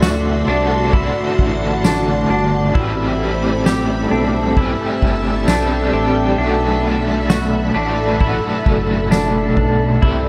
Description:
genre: dream pop.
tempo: 66 BPM.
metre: 4/4.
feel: straight.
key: G major.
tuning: A4 = 438 Hz.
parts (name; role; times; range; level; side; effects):
cranked stack guitar; accompaniment; 0.0-10.3 s; A2 to C5; -22 LUFS; equal; overdrive, tremolo, ensemble chorus.
soft string machine; sustained chords; 0.0-10.3 s; C4 to C6; -25 LUFS; equal; ensemble chorus.
semi-hollow electric guitar; arpeggios; 0.0-10.3 s; D4 to G4; -25 LUFS; equal; subtle chorus, tape echo.
chorused synth bass; bass; 0.0-10.3 s; F#1 to D2; -24 LUFS; equal; none.
soft-mallet drum kit; drums; 0.0-10.2 s; kick drum, ride cymbal, snare drum, tambourine; -22 LUFS; equal; none.
drifting glass-harmonics texture; texture; 0.0-6.7 s; E5 to A5; -36 LUFS; equal; none.
room: moderate booth ambience, RT60 0.2 s.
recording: dark, warm production.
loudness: -17 LUFS.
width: mono.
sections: 0.0-10.3 A section.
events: none.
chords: 0.0 D9; 2.8 Am9; 6.4 Gmaj9 (rootless).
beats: 0.02 0.93 1.84 | 2.75 3.66 4.57 5.48 | 6.39 7.30 8.21 9.12 | 10.02.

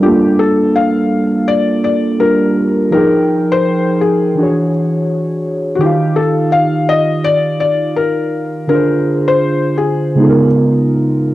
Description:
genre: hip hop.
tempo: 83 BPM.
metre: 4/4.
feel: swing 63% on 16ths.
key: G minor.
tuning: A4 = 439 Hz.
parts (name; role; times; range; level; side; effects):
felt-muted upright piano; melody; 0.0-10.5 s; F#4 to F5; -16 LUFS; left 4 dB; cassette tape.
muted felt-like synth keys; accompaniment; 0.0-11.3 s; C#3 to G5; -13 LUFS; right 1 dB; chorus, cassette tape.
room: moderate spring reverb, RT60 1.4 s, small room ambience.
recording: home recording on cassette.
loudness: -11 LUFS.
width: side -15 dB against mid.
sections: 0.0-11.3 A section.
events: none.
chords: 0.0 Gm9; 2.9 Fm11; 4.4 E13; 5.8 Ebadd9; 8.7 Dm7b5; 10.1 C#13.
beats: | 0.03 0.75 1.47 2.20 | 2.92 3.64 4.37 5.09 | 5.81 6.53 7.26 7.98 | 8.70 9.43 10.15 10.87.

